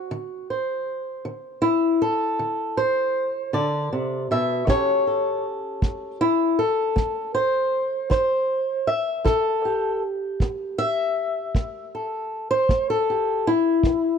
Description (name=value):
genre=acoustic country blues, solo or duo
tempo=52 BPM (dotted quarters)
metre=12/8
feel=straight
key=unclear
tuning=A4 = 440 Hz
part: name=fingerpicked swing-style acoustic guitar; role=melody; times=0.0-14.2 s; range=B2 to E5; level=-21 LUFS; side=left 1 dB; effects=none
part: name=kick drum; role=drums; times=4.7-14.0 s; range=none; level=-22 LUFS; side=right 1 dB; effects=none
room=little or no reverb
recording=dry, close 1970s-style studio recording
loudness=-21 LUFS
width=side -7 dB against mid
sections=0.0-14.2 A section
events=steel-string acoustic guitar solo 0.0-14.2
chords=0.0 D7(no3); 4.7 A7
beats=| 0.12 1.26 2.40 3.54 | 4.69 5.83 6.97 8.12 | 9.26 10.40 11.55 12.69 | 13.84